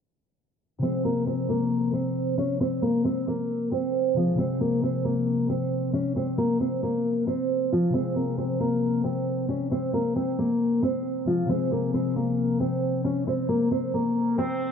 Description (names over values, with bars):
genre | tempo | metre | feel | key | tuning
hip hop | 135 BPM | 4/4 | half-time | F minor | A4 = 440 Hz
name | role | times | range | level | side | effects
fingerpicked steel-string acoustic guitar | melody | 0.8-14.7 s | F3 to Db5 | -24 LUFS | equal | none
concert harp | accompaniment | 0.8-14.7 s | C3 to C4 | -30 LUFS | left 4 dB | none
room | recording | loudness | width
moderate lush hall reverb, RT60 2.7 s | low-pass filter | -23 LUFS | side -7 dB against mid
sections
0.8-14.7 A section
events
filter sweep 0.8-14.7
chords
0.8 Fm